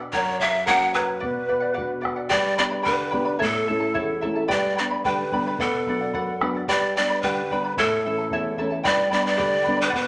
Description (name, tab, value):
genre	andean folk, Andean ensemble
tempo	110 BPM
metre	2/4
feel	straight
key	unclear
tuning	A4 = 440 Hz
part	charango	accompaniment	0.0-10.1 s	E4 to B5	-25 LUFS	equal	none
part	nylon-string guitar	accompaniment	0.0-10.1 s	E2 to G4	-29 LUFS	left 1 dB	none
part	breathy bright large pan pipes	melody	0.1-10.1 s	A4 to F#5	-23 LUFS	equal	none
part	bombo	percussion	0.1-10.1 s	none	-33 LUFS	equal	none
part	mellow large quena	second line	0.2-2.0 s	B4 to G5	-27 LUFS	equal	none
room	wet large studio reverb, RT60 0.9 s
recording	band playing live in one room, small speaker sound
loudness	-20 LUFS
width	side -26 dB against mid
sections	0.0-2.3 A section; 2.3-10.1 B section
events	none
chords	0.1 F#; 1.2 Bm; 2.3 G; 3.4 A; 4.5 G; 5.6 Bm; 6.7 G; 7.8 A; 8.9 G